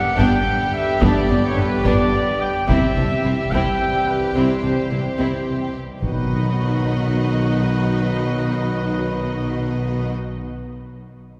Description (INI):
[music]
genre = cinematic, epic orchestral film score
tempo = 72 BPM (dotted quarters)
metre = 6/8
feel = straight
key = unclear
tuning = A4 = 439 Hz
[part]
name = clear symphonic violin section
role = melody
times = 0.0-10.1 s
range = G4 to D#5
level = -35 LUFS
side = equal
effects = none
[part]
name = bright trombone section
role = sustained chords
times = 0.0-10.1 s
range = D3 to G3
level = -31 LUFS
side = equal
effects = none
[part]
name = clear French horn section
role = sustained chords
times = 0.0-10.1 s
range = B3 to B4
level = -31 LUFS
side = equal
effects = none
[part]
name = clear trumpet section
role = stabs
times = 0.0-10.1 s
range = B4 to G5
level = -27 LUFS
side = equal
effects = none
[part]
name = mellow tuba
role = bass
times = 0.0-10.1 s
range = G1 to C2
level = -30 LUFS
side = equal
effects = none
[part]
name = warm symphonic violin section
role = second line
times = 0.2-10.1 s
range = C#4 to F#4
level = -34 LUFS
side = equal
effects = none
[part]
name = clear symphonic viola section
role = accompaniment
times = 0.2-10.1 s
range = B3 to D#4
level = -29 LUFS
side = equal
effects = none
[part]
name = rich symphonic cello section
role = bass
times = 0.2-10.1 s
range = G2 to C3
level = -29 LUFS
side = equal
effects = none
[part]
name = rich symphonic double bass section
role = bass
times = 0.2-10.1 s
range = G1 to C2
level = -29 LUFS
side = equal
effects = none
[part]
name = taiko ensemble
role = drums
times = 0.2-7.1 s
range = none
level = -28 LUFS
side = equal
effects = none
[part]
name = timpani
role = percussion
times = 6.0-10.8 s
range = B2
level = -32 LUFS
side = equal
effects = none
[sound]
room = wet church reverb, RT60 3.8 s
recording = recorded in a church or concert hall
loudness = -20 LUFS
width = mono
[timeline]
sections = 0.0-6.0 A section; 6.0-9.4 B section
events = none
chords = 0.0 G; 2.7 C; 6.0 B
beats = 0.18 | 1.02 1.85 | 2.68 3.52 | 4.35 5.18 | 6.02 6.85 | 7.69 8.52